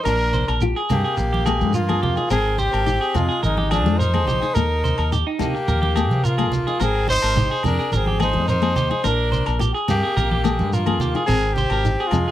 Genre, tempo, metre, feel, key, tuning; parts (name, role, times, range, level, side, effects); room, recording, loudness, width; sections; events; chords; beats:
highlife guitar band; 107 BPM; 4/4; straight; Bb mixolydian; A4 = 441 Hz
breathy trumpet; melody; 0.0-12.3 s; D4 to C5; -23 LUFS; equal
raspy tenor saxophone; second line; 0.0-12.3 s; F3 to Eb4; -30 LUFS; left 6 dB
clean electric guitar; arpeggios; 0.0-12.3 s; Eb4 to C5; -26 LUFS; right 3 dB
picked steel-string acoustic guitar; accompaniment; 0.1-12.3 s; Ab3 to F4; -26 LUFS; left 8 dB
deep dub fingered electric bass; bass; 0.1-12.3 s; Ab1 to C3; -22 LUFS; equal
agogo bells; percussion; 0.1-12.3 s; -32 LUFS; left 10 dB
shekere; percussion; 0.1-12.3 s; -26 LUFS; right 2 dB
congas; percussion; 0.3-12.3 s; -27 LUFS; right 2 dB
light reverb; -18 LUFS; side -12 dB against mid
0.1-12.3 A section
0.1 Bb; 2.3 Ab; 4.6 Eb; 6.8 Ab; 9.0 Bb; 11.3 Ab
| 0.05 0.62 1.18 1.74 | 2.31 2.87 3.43 3.99 | 4.55 5.12 5.68 6.24 | 6.80 7.36 7.92 8.48 | 9.04 9.60 10.16 10.72 | 11.29 11.85